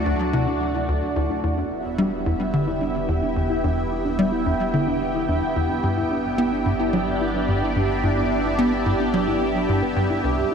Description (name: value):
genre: ambient, sequencer-driven space music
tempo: 109 BPM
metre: 4/4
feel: straight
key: unclear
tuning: A4 = 437 Hz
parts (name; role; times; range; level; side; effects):
- lush unison pad; sustained chords; 0.0-10.5 s; A3 to G5; -24 LUFS; right 1 dB; chorus, phaser
- warm sub bass; bass; 0.0-10.5 s; E1 to D2; -33 LUFS; equal; tube saturation
- bubbling stepped-filter texture; texture; 0.0-10.5 s; E4 to F#5; -31 LUFS; equal; chorus, built-in reverb
- soft round pluck; arpeggios; 0.1-10.5 s; D4 to E5; -28 LUFS; moving between left 4 dB and right 2 dB; chorus, auto-pan, tape echo
- tight sequencer bass; riff; 0.1-10.4 s; C2 to B3; -24 LUFS; equal; analog chorus, tape echo
room: wet cathedral reverb, RT60 5.0 s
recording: in a vast, echoing space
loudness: -20 LUFS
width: side -6 dB against mid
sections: 0.0-10.5 A section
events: none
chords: 0.0 D; 1.4 Em; 5.8 G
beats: 0.33 0.88 | 1.43 1.98 2.53 3.08 | 3.63 4.18 4.73 5.29 | 5.83 6.39 6.94 7.49 | 8.04 8.59 9.14 9.69 | 10.24